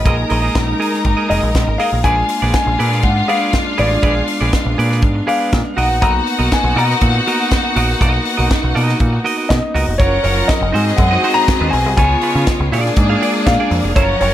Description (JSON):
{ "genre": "disco", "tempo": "121 BPM", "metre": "4/4", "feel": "straight", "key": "unclear", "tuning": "A4 = 440 Hz", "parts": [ { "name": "warm concert grand piano", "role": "melody", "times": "0.0-14.3 s", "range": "Db5 to A#5", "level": "-19 LUFS", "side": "left 2 dB", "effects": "plate reverb" }, { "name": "warm studio string section", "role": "sustained chords", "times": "0.0-14.3 s", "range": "Db3 to Bb4", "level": "-22 LUFS", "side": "equal", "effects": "none" }, { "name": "deep dub picked electric bass", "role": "bass", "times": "0.0-14.3 s", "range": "F1 to Db3", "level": "-17 LUFS", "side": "equal", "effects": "none" }, { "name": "clear studio violin section", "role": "second line", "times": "0.1-14.3 s", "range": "Ab3 to Bb5", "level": "-21 LUFS", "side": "left 2 dB", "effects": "plate reverb" }, { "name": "clean electric guitar", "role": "accompaniment", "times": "0.1-14.3 s", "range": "Eb4 to F5", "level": "-22 LUFS", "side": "right 5 dB", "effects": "plate reverb" }, { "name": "tight funk drum kit", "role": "drums", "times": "0.1-14.3 s", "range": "hi-hat, kick drum, snare drum", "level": "-19 LUFS", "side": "equal", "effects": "none" } ], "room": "light reverb, small room ambience", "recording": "none", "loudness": "-13 LUFS", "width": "side -12 dB against mid", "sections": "0.0-2.0 A section; 2.0-10.0 B section; 10.0-14.3 C section", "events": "none", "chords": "0.1 Bb7sus4; 2.0 Bb7b9; 5.8 Bmaj7; 10.0 Gbmaj7; 10.7 Ab7; 12.0 Db7; 12.7 Bb7" }